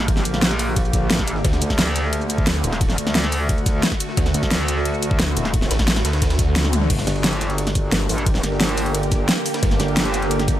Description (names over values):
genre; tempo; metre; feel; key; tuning
dark technical drum and bass; 176 BPM; 4/4; straight; G harmonic minor; A4 = 438 Hz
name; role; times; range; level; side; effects
swarming drone; sustained chords; 0.0-10.6 s; D3 to G4; -27 LUFS; equal; built-in reverb, sidechain pumping
metallic wobble bass; bass; 0.0-10.6 s; Eb1 to D2; -22 LUFS; equal; chorus
dubstep drum kit; drums; 0.0-10.5 s; crash cymbal, hi-hat, shaker, snare drum, toms; -22 LUFS; equal; overdrive
breakbeat sampler-style drum kit; drums; 0.1-10.6 s; hi-hat, ride cymbal, snare drum; -33 LUFS; right 1 dB; none
electronic kick drum; drums; 0.1-10.5 s; none; -21 LUFS; equal; overdrive
snarling distorted saw bass; bass; 1.4-9.8 s; G1 to D2; -21 LUFS; equal; distortion, tube saturation
ethereal airy pad; texture; 7.4-10.6 s; D4 to G5; -28 LUFS; right 2 dB; ensemble chorus, built-in reverb, sidechain pumping
room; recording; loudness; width
light reverb; none; -17 LUFS; side -12 dB against mid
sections
0.0-6.9 A section; 6.9-10.6 A section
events
drop 0.0-6.9, 6.9-10.6; kick drops out 6.6-6.9; band accent 6.6; drum fill 6.6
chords
0.0 Gm; 1.4 D; 6.9 Gm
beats
| 0.08 0.42 0.76 1.10 | 1.45 1.79 2.13 2.47 | 2.81 3.15 3.49 3.83 | 4.17 4.51 4.86 5.20 | 5.54 5.88 6.22 6.56 | 6.90 7.24 7.58 7.92 | 8.26 8.61 8.95 9.29 | 9.63 9.97 10.31